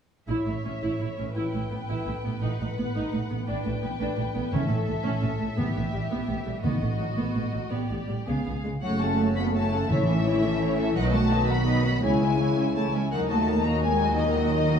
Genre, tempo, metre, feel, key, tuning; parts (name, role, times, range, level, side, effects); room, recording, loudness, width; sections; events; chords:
cinematic; 113 BPM (dotted quarters); 6/8; straight; A mixolydian; A4 = 440 Hz
rich studio violin section; melody; 0.3-14.8 s; D5 to B5; -33 LUFS; left 5 dB
warm studio violin section; second line; 0.3-14.8 s; C#4 to F#5; -34 LUFS; left 4 dB
warm symphonic viola section; accompaniment; 0.3-14.8 s; D#3 to A4; -32 LUFS; right 2 dB
rich symphonic double bass section; bass; 0.3-14.8 s; F#1 to D#2; -30 LUFS; right 1 dB
warm studio cello section; bass; 0.3-14.8 s; A2 to B3; -30 LUFS; right 3 dB
timpani; percussion; 4.5-7.1, 9.9-10.4 s; A2; -30 LUFS; left 1 dB
bright trombone section; sustained chords; 8.8-14.8 s; C#3 to A3; -31 LUFS; right 2 dB
dark French horn section; sustained chords; 8.8-14.8 s; A#2 to F#4; -31 LUFS; left 8 dB
wet scoring stage reverb, RT60 1.5 s; small room ambience; -24 LUFS; side -7 dB against mid
0.3-8.8 A section; 8.8-14.8 B section
build-up 0.3-8.8
0.3 A; 1.4 Em/A; 2.4 B/A; 3.5 G/A; 4.5 A; 5.6 Em/A; 6.6 B/A; 7.7 G; 8.3 C#7; 8.8 F#m; 9.9 A; 11.0 B; 12.0 C#m; 13.1 D#m